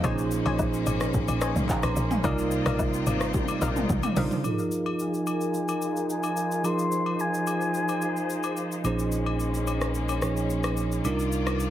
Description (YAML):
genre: amapiano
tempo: 109 BPM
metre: 4/4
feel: straight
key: F minor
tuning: A4 = 438 Hz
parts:
  - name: bell-like tine electric piano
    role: accompaniment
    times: 0.0-11.7 s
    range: Bb2 to C6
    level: -28 LUFS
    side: right 2 dB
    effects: low-pass filter
  - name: bright studio string section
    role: sustained chords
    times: 0.0-11.7 s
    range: C3 to D5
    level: -33 LUFS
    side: left 3 dB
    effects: sidechain pumping, low-pass filter
  - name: analog pluck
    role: stabs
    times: 0.0-4.3 s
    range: Bb4 to Ab5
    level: -35 LUFS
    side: left 5 dB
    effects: chorus, ping-pong delay
  - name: tight log drum bass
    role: bass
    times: 0.0-4.3 s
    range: Ab1 to C2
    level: -30 LUFS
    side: left 1 dB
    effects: none
  - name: deep house drum kit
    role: drums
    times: 0.0-11.7 s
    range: handclaps, hi-hat, kick drum, rim click, shaker, toms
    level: -31 LUFS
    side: left 1 dB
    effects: none
  - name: agogo bells and woodblock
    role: percussion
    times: 0.0-11.6 s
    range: none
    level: -37 LUFS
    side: left 5 dB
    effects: none
  - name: breathy bright concert flute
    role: melody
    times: 5.0-8.6 s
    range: Ab5 to C6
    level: -31 LUFS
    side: left 2 dB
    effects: low-pass filter, ping-pong delay
  - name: saturated sub bass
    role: bass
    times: 8.8-11.7 s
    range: Bb1 to C2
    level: -31 LUFS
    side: left 1 dB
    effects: none
room: light reverb, digital ambience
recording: heavily compressed radio sound, multiband compression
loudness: -24 LUFS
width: side -12 dB against mid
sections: 0.0-4.4 A section; 4.4-11.7 B section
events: drop 0.0-4.4; drum fill 3.3-4.4; filter sweep 4.4-11.7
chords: 0.0 Bbm11; 2.2 Cm11; 4.4 Fm7; 8.8 Bbm11; 11.0 Cm11